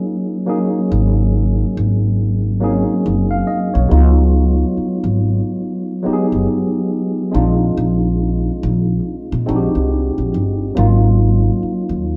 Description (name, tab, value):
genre	R&B, neo-soul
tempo	70 BPM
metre	4/4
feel	swing 62% on 16ths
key	unclear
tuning	A4 = 442 Hz
part	tine electric piano	accompaniment	0.0-12.2 s	F#3 to E#5	-20 LUFS	equal	none
part	upright bass	bass	0.9-12.2 s	F#1 to A#2	-18 LUFS	equal	none
room	wet studio reverb, RT60 0.7 s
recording	band playing live in one room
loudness	-16 LUFS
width	mono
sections	0.0-12.2 A section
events	none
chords	0.0 G#9sus4; 3.9 C#9sus4; 7.3 A#9sus4; 10.7 G#9sus4